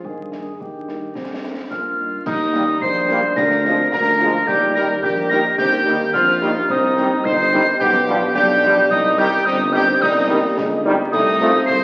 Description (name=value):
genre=military-style march for wind band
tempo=108 BPM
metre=2/4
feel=straight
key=Eb major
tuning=A4 = 440 Hz
part: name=dark trumpet section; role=melody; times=0.0-11.8 s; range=Eb4 to C5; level=-25 LUFS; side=equal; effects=none
part: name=mellow euphonium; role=second line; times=0.0-11.8 s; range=Eb3 to Eb4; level=-25 LUFS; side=equal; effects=none
part: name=mellow tuba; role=bass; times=0.0-11.8 s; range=G1 to G2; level=-28 LUFS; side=equal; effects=none
part: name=concert bass drum, concert snare drum and clash cymbals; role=drums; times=0.0-11.8 s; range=none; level=-34 LUFS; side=equal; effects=none
part: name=mellow French horn section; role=accompaniment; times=0.3-11.5 s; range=Eb3 to F4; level=-31 LUFS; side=equal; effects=none
part: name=mellow piccolo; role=second line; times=1.7-11.8 s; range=Eb6 to C7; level=-21 LUFS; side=equal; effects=none
part: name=dark trombone section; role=sustained chords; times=2.5-11.5 s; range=Eb3 to Bb3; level=-26 LUFS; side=equal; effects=none
room=wet scoring stage reverb, RT60 1.8 s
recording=very old 78 rpm record, vinyl crackle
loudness=-17 LUFS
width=mono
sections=0.0-2.3 A section; 2.3-11.8 A section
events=none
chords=0.0 Eb/G; 2.3 Eb; 3.4 Bb7/D; 4.5 Eb; 6.7 Cm; 7.8 G7/B; 8.9 Cm; 11.1 F7/C